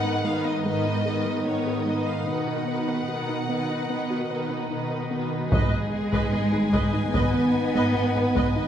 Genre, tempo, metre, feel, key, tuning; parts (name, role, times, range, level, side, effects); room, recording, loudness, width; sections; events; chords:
cinematic, hybrid orchestral and electronic film score; 74 BPM; 4/4; straight; G# minor; A4 = 440 Hz
warm symphonic violin section; melody; 0.0-8.7 s; C#5 to G#5; -34 LUFS; left 3 dB
warm symphonic violin section; second line; 0.0-8.7 s; D#4 to B4; -32 LUFS; left 2 dB
warm symphonic viola section; accompaniment; 0.0-8.6 s; D#3 to D#5; -32 LUFS; right 1 dB
soft additive organ-like pad; sustained chords; 0.0-8.7 s; D#3 to D#5; -30 LUFS; equal; ensemble chorus, built-in reverb, phaser
soft round pluck; arpeggios; 0.0-8.7 s; G#3 to B4; -34 LUFS; left 1 dB; chorus
warm symphonic cello section; bass; 0.0-8.7 s; G#2 to B3; -27 LUFS; right 1 dB
mellow French horn section; sustained chords; 5.5-8.7 s; B4 to D#5; -36 LUFS; left 2 dB
warm studio double bass section; bass; 5.5-8.6 s; G#1; -29 LUFS; right 2 dB
solo taiko drums; drums; 5.5-8.7 s; -27 LUFS; equal
wet recital hall reverb, RT60 1.7 s; recorded in a church or concert hall; -22 LUFS; side -9 dB against mid
0.0-5.5 A section; 5.5-8.7 B section
0.0 G#m; 2.3 B; 5.5 G#m